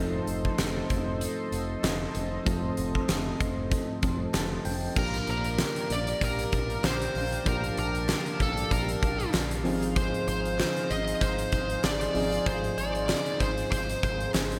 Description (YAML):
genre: 1980s-style pop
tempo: 96 BPM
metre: 4/4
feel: swing 55% on 16ths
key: Bb major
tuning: A4 = 440 Hz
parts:
  - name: soft electric-piano-like synth keys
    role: accompaniment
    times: 0.0-14.6 s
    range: F3 to A5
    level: -36 LUFS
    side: equal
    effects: chorus, slapback echo
  - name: chorused pulse-width pad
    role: sustained chords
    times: 0.0-14.6 s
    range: Eb4 to C6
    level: -39 LUFS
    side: equal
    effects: none
  - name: picked electric bass with an envelope filter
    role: bass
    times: 0.0-14.6 s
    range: F1 to Bb1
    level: -37 LUFS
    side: equal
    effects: none
  - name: huge arena drum kit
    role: drums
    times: 0.3-14.6 s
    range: crash cymbal, hi-hat, kick drum, snare drum, tambourine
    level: -33 LUFS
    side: equal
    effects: none
  - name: group handclap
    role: percussion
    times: 0.6-14.5 s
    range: none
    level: -48 LUFS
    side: equal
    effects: none
  - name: smooth overdriven lead guitar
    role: melody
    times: 5.0-14.3 s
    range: A4 to Eb5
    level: -34 LUFS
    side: equal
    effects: none
room: moderate lush hall reverb, RT60 2.3 s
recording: big arena sound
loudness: -28 LUFS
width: mono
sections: 0.0-5.0 A section; 5.0-14.6 B section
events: synth keys fill 4.0-5.0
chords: 0.0 F; 5.0 Bb6; 9.7 Ab6